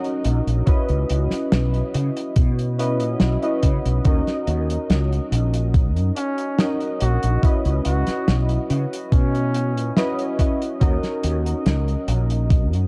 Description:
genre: vaporwave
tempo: 71 BPM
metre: 4/4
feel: straight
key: C# dorian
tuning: A4 = 440 Hz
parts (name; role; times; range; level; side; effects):
- warbly lo-fi synth keys; accompaniment; 0.0-12.9 s; C#4 to D#5; -28 LUFS; equal; analog chorus, analog delay
- warm soul drum kit; drums; 0.0-12.9 s; hi-hat, snare drum; -27 LUFS; equal; none
- mellow fretless electric bass; bass; 0.2-12.9 s; A#1 to C#3; -23 LUFS; equal; ensemble chorus
- electronic kick drum; drums; 0.7-12.7 s; none; -20 LUFS; equal; overdrive
- warm flugelhorn; melody; 6.2-10.0 s; C#4 to F#4; -31 LUFS; equal; tape echo
room: light reverb, studio reverb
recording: dark, warm production, cassette tape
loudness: -21 LUFS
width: mono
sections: 0.0-12.9 A section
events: none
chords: 0.0 D#m7; 0.7 C#m11; 4.1 D#m7; 7.4 C#m11; 10.8 D#m7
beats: | 0.67 1.52 2.36 3.21 | 4.05 4.90 5.74 6.59 | 7.43 8.28 9.12 9.97 | 10.81 11.66 12.50

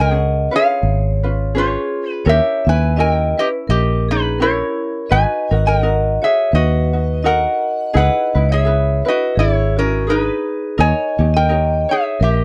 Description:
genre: Hawaiian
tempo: 84 BPM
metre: 4/4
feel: swing 57% on 8ths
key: unclear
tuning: A4 = 440 Hz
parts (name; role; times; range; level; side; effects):
- metal-body resonator slide guitar; melody; 0.0-12.4 s; C#4 to G#5; -21 LUFS; equal; none
- vibraphone with medium hard mallets; second line; 0.0-12.4 s; F#4 to E5; -24 LUFS; equal; none
- ukulele; accompaniment; 0.0-12.4 s; C#4 to C#5; -28 LUFS; equal; none
- fingered electric bass; bass; 0.0-12.4 s; G#1 to D#2; -19 LUFS; equal; none
room: light reverb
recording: dry, close 1970s-style studio recording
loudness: -17 LUFS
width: mono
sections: 0.0-12.4 A section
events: none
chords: 0.0 C#7; 2.3 D#7b9; 5.1 G#m9; 8.0 C#m9; 10.8 D#7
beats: 0.12 0.83 1.55 | 2.26 2.97 3.69 4.40 | 5.11 5.82 6.53 7.24 | 7.95 8.66 9.37 10.08 | 10.79 11.50 12.21

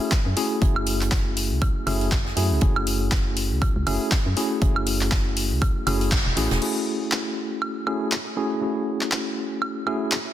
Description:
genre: deep house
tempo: 120 BPM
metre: 4/4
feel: swing 58% on 16ths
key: F# minor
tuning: A4 = 440 Hz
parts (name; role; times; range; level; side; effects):
- tine electric piano; stabs; 0.0-10.1 s; A3 to G#4; -26 LUFS; equal; overdrive, fast stereo tremolo, sidechain pumping, low-pass filter, digital delay
- electronic kick drum; drums; 0.1-6.2 s; none; -22 LUFS; equal; small room ambience
- natural country drum kit; drums; 0.1-6.6 s; hi-hat, snare drum; -36 LUFS; right 4 dB; high-pass filter on hats, small room ambience, high-pass filter on snare, high-pass filter on room
- punchy analog drum machine; drums; 0.1-10.2 s; crash cymbal, handclaps, hi-hat, woodblock; -27 LUFS; equal; overdrive, small room ambience
- organ-like FM bass; bass; 0.3-6.6 s; E1 to F#2; -25 LUFS; equal; tube saturation, sidechain pumping
room: light reverb, digital ambience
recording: dense, heavily limited modern master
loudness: -21 LUFS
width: side -12 dB against mid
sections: 0.0-6.6 A section; 6.6-10.3 B section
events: band accent 6.1; filter sweep on tine electric piano 6.6-10.3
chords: 0.0 F#m9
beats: 0.12 | 0.62 1.12 1.62 2.12 | 2.62 3.12 3.62 4.12 | 4.62 5.12 5.62 6.12 | 6.62 7.12 7.62 8.12 | 8.62 9.12 9.62 10.12

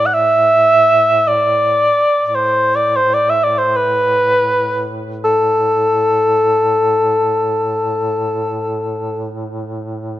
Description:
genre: caucasian folk, Caucasian lament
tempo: free time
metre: none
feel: none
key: A minor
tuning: A4 = 440 Hz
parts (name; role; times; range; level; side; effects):
- mellow cor anglais; melody; 0.0-9.3 s; A4 to F#5; -12 LUFS; equal; none
- warm duduk; drone; 0.0-10.2 s; A2; -26 LUFS; right 1 dB; stereo widening
room: light reverb, small room reverb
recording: rough home demo mix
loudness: -12 LUFS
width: side -13 dB against mid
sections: 0.0-10.2 A section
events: slowing down 8.9-10.2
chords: none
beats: free time

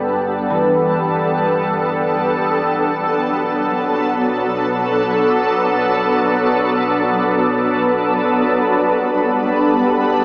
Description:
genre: ambient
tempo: free time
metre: none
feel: none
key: G lydian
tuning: A4 = 440 Hz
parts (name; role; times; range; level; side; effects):
- shimmering ambient pad; sustained chords; 0.0-10.2 s; F#3 to B4; -14 LUFS; equal; chorus, built-in reverb
- dark chamber double bass section; bass; 0.0-8.4 s; G1 to B1; -35 LUFS; equal; none
- concert harp; arpeggios; 0.5-10.2 s; E3 to D5; -24 LUFS; equal; tape echo
room: wet cathedral reverb, RT60 5.1 s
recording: small speaker sound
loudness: -14 LUFS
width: side -30 dB against mid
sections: 0.0-8.4 A section; 8.4-10.2 B section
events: fade-out on harp 0.0-8.4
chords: 0.0 Gadd9; 2.8 Bm7; 8.4 Gadd9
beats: free time

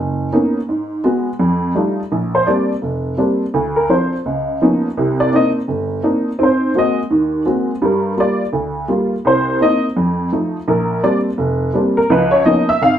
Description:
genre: solo jazz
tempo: 168 BPM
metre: 4/4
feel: swing 64% on 8ths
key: Bb major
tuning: A4 = 440 Hz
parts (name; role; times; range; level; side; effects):
- honky-tonk upright piano; solo; 0.0-13.0 s; F1 to F5; -14 LUFS; equal; none
room: wet studio reverb, RT60 0.8 s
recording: band playing live in one room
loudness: -14 LUFS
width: side -10 dB against mid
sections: 0.0-2.1 A section; 2.1-13.0 B section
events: honky-tonk piano solo 2.1-13.0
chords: 0.0 Bmaj9; 0.7 G#m7; 1.4 F13; 2.1 Bb69; 3.5 Dm7; 4.2 Db13; 5.0 Cm9; 6.4 Ab9; 7.8 Gm7; 9.2 Cm7; 10.0 F7; 10.7 Bb69; 12.1 Db13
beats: 0.32 | 0.68 1.03 1.39 1.75 | 2.10 2.46 2.82 3.18 | 3.53 3.89 4.25 4.61 | 4.96 5.32 5.68 6.04 | 6.39 6.75 7.11 7.46 | 7.82 8.18 8.53 8.89 | 9.24 9.60 9.96 10.31 | 10.67 11.03 11.38 11.74 | 12.09 12.45 12.81

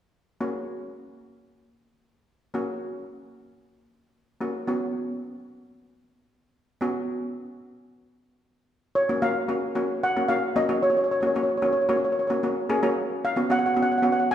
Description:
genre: calypso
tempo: 112 BPM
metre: 4/4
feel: straight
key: F# major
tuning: A4 = 440 Hz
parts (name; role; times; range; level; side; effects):
- steel pan; accompaniment; 0.4-14.3 s; A#3 to G#4; -26 LUFS; equal; none
- steel pan; melody; 9.0-14.3 s; C#5 to G#5; -24 LUFS; equal; none
room: wet recital hall reverb, RT60 1.7 s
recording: recorded in a church or concert hall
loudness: -23 LUFS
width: side -10 dB against mid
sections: 0.4-9.0 A section; 9.0-14.3 B section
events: none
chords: 0.4 F#; 4.7 Bsus2; 9.0 F#; 13.2 Bsus2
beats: | 0.41 0.94 1.48 2.01 | 2.55 3.08 3.62 4.15 | 4.68 5.22 5.75 6.29 | 6.82 7.36 7.89 8.43 | 8.96 9.49 10.03 10.56 | 11.10 11.63 12.17 12.70 | 13.23 13.77 14.30

